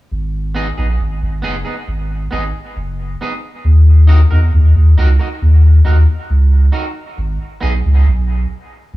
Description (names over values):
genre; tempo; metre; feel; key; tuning
dub reggae; 68 BPM; 4/4; straight; G# minor; A4 = 440 Hz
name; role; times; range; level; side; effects
warm sub bass; bass; 0.1-9.0 s; F#1 to E2; -10 LUFS; equal; none
electric guitar at the edge of break-up; accompaniment; 0.5-7.7 s; B3 to A#4; -24 LUFS; right 2 dB; lush chorus, dub echo
room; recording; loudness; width
little or no reverb; echo-heavy mix, small room ambience; -11 LUFS; side -18 dB against mid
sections
0.1-7.2 A section; 7.2-9.0 B section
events
break 7.2-9.0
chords
0.1 G#m; 3.6 D#m; 7.2 G#m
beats
| 0.11 0.99 1.88 2.76 | 3.64 4.53 5.41 6.29 | 7.17 8.05 8.93